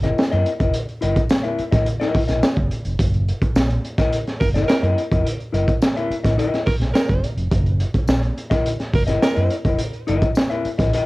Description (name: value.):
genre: funk.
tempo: 106 BPM.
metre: 4/4.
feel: straight.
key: F# mixolydian.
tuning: A4 = 444 Hz.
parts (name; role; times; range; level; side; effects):
mellow electric guitar; accompaniment; 0.0-11.1 s; E4 to E5; -22 LUFS; left 3 dB; cassette tape.
fingered electric bass; bass; 0.0-10.9 s; E#1 to F#2; -21 LUFS; equal; none.
crunchy breakbeat drum kit; drums; 0.0-11.1 s; hi-hat, kick drum, snare drum; -20 LUFS; equal; none.
tambourine; percussion; 0.2-10.5 s; none; -41 LUFS; left 3 dB; none.
breathy tenor saxophone; second line; 4.4-9.6 s; A#4; -27 LUFS; right 3 dB; cassette tape, tape echo.
room: little or no reverb.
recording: home recording on cassette.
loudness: -17 LUFS.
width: side -20 dB against mid.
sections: 0.0-11.1 A section.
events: none.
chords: 0.0 F#6.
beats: 0.17 | 0.74 1.30 1.87 2.43 | 3.00 3.56 4.13 4.69 | 5.26 5.82 6.39 6.96 | 7.52 8.09 8.65 9.22 | 9.79 10.35 10.92.